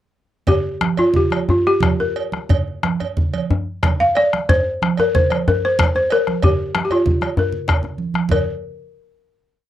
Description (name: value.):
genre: west african traditional, West African drum ensemble.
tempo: 118-134 BPM (dotted quarters).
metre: 12/8.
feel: straight.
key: Bb major pentatonic.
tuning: A4 = 439 Hz.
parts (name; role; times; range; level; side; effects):
balafon; melody; 0.5-8.5 s; F4 to F5; -18 LUFS; left 1 dB; none.
bombo; percussion; 0.5-8.5 s; none; -20 LUFS; left 1 dB; none.
congas; percussion; 0.5-8.4 s; none; -24 LUFS; right 5 dB; none.
cowbell; percussion; 0.5-8.5 s; none; -28 LUFS; right 8 dB; none.
djembe; percussion; 0.5-8.5 s; none; -22 LUFS; left 2 dB; none.
room: light reverb.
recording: dry, close 1970s-style studio recording.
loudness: -16 LUFS.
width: side -12 dB against mid.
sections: 0.5-8.3 A section; 8.3-9.7 final note.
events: speeding up 0.5-9.7; drum fill 7.5-8.3.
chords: none.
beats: | 0.48 0.98 1.49 2.00 | 2.50 3.00 3.50 4.00 | 4.49 4.98 5.47 5.95 | 6.43 6.91 7.38 7.85 | 8.31.